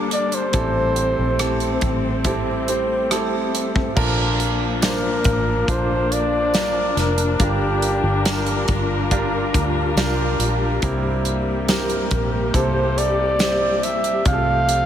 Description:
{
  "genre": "pop ballad",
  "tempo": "70 BPM",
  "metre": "4/4",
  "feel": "straight",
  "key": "unclear",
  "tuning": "A4 = 441 Hz",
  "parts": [
    { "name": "warm concert grand piano", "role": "accompaniment", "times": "0.0-14.9 s", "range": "G2 to C5", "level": "-25 LUFS", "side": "right 2 dB", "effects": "none" },
    { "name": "dark studio string section", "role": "sustained chords", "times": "0.0-14.9 s", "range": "C3 to Bb4", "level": "-25 LUFS", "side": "left 3 dB", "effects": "none" },
    { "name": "vintage muted fingered electric bass", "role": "bass", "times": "0.0-14.9 s", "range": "F1 to D2", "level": "-24 LUFS", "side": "equal", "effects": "none" },
    { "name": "mellow flugelhorn", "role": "melody", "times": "0.1-14.9 s", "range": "G4 to F5", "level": "-22 LUFS", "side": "equal", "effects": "ping-pong delay" },
    { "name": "modern studio drum kit", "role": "drums", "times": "0.1-14.9 s", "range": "crash cymbal, hi-hat, kick drum, rim click, snare drum", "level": "-24 LUFS", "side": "equal", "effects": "none" },
    { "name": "tambourine", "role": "percussion", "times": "4.8-13.6 s", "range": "none", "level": "-38 LUFS", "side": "left 6 dB", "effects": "none" }
  ],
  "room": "moderate huge ambient reverb, RT60 3.9 s",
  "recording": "dreamy mix soaked in reverb",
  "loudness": "-18 LUFS",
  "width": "side -10 dB against mid",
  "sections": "0.0-4.0 A section; 4.0-14.9 B section",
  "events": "none",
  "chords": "0.0 Gm; 0.5 Am7; 4.0 Bbmaj7; 7.4 Gm7; 10.8 C7; 14.3 F/C",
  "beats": "| 0.54 1.40 2.26 3.11 | 3.97 4.83 5.68 6.54 | 7.40 8.26 9.11 9.97 | 10.83 11.69 12.54 13.40 | 14.26"
}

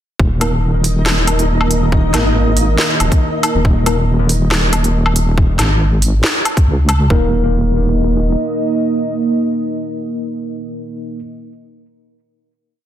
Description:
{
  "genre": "deep dubstep",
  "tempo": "139 BPM",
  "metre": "4/4",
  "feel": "swing 53% on 16ths, half-time",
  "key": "unclear",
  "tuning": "A4 = 444 Hz",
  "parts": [
    { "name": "dark analog pad", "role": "sustained chords", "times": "0.7-11.2 s", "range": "Eb3 to Eb5", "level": "-20 LUFS", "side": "right 2 dB", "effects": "chorus" },
    { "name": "deep soft wobble bass", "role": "bass", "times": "0.2-8.4 s", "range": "Eb1 to Db2", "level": "-14 LUFS", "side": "equal", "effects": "chorus" },
    { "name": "electronic kick drum", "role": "drums", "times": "0.2-7.2 s", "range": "none", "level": "-14 LUFS", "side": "equal", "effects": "none" },
    { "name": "flickering grainy texture", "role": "texture", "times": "0.6-5.4 s", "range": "Eb4 to Eb5", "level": "-24 LUFS", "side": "left 1 dB", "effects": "built-in reverb" },
    { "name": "mellow tine electric piano", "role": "stabs", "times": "0.4-4.0, 7.1-11.2 s", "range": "Bb3 to Bb4", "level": "-22 LUFS", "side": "left 2 dB", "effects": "medium stereo tremolo, dub echo" },
    { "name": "garage drum kit", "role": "drums", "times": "0.4-7.0 s", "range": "hi-hat, snare drum, woodblock", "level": "-18 LUFS", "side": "equal", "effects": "none" }
  ],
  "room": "moderate echo chamber reverb, RT60 1.5 s",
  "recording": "dense, heavily limited modern master",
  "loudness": "-12 LUFS",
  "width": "side -11 dB against mid",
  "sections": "0.2-7.1 drop; 7.1-10.6 final chord",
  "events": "drop 0.2-7.1",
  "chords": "0.2 Eb5",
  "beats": "| 0.20 0.63 1.06 1.49 | 1.92 2.35 2.79 3.22 | 3.65 4.08 4.51 4.94 | 5.38 5.81 6.24 6.67 | 7.10 7.53 7.97 8.40 | 8.83 9.26 9.69 10.12"
}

